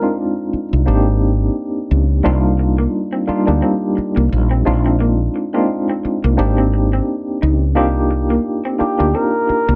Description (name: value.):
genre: R&B.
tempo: 87 BPM.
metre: 4/4.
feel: swing 56% on 16ths.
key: C minor.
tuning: A4 = 440 Hz.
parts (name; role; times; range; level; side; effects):
trumpet with bucket mute; melody; 0.0-0.1, 8.8-9.8 s; G4 to Bb4; -22 LUFS; equal; none.
mellow tine electric piano; accompaniment; 0.0-9.8 s; G3 to G4; -20 LUFS; equal; medium tremolo.
woody fretless electric bass; bass; 0.5-9.8 s; Ab1 to D2; -18 LUFS; equal; analog chorus.
electric guitar through a small old amp; second line; 2.2-9.8 s; Bb3 to Eb4; -24 LUFS; equal; none.
room: light reverb.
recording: dark, warm production.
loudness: -17 LUFS.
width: mono.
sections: 0.0-9.8 A section.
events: none.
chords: 0.0 Bb9sus4 (rootless); 0.9 Abmaj9; 2.2 Cm7; 4.7 Bb9sus4; 6.4 Abmaj9; 7.8 Cm7.